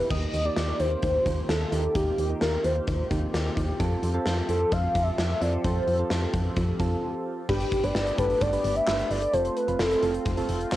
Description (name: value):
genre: synth-pop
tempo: 130 BPM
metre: 4/4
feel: straight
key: unclear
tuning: A4 = 440 Hz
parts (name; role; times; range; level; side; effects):
- warm velvety synth lead; melody; 0.0-10.3 s; G4 to F5; -26 LUFS; equal; chorus, cassette tape
- soft electric-piano-like synth keys; accompaniment; 0.0-10.8 s; Bb3 to C5; -32 LUFS; right 3 dB; chorus, cassette tape
- phased analog pad; sustained chords; 0.0-10.8 s; Eb3 to A4; -35 LUFS; left 1 dB; phaser, chorus, cassette tape
- solid FM bass; bass; 0.0-10.8 s; F1 to F2; -28 LUFS; equal; transformer saturation
- gated 80s drum kit; drums; 0.1-10.8 s; crash cymbal, handclaps, hi-hat, kick drum, snare drum; -30 LUFS; equal; cassette tape
room: light reverb, studio reverb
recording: home recording on cassette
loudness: -23 LUFS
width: side -14 dB against mid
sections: 0.1-7.5 A section; 7.5-10.8 B section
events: break 7.0-7.5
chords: 0.1 Eb6; 3.8 F; 7.5 Gadd9; 9.3 F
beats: | 0.11 0.57 1.03 1.49 | 1.95 2.41 2.88 3.34 | 3.80 4.26 4.72 5.18 | 5.64 6.11 6.57 7.03 | 7.49 7.95 8.41 8.88 | 9.34 9.80 10.26 10.72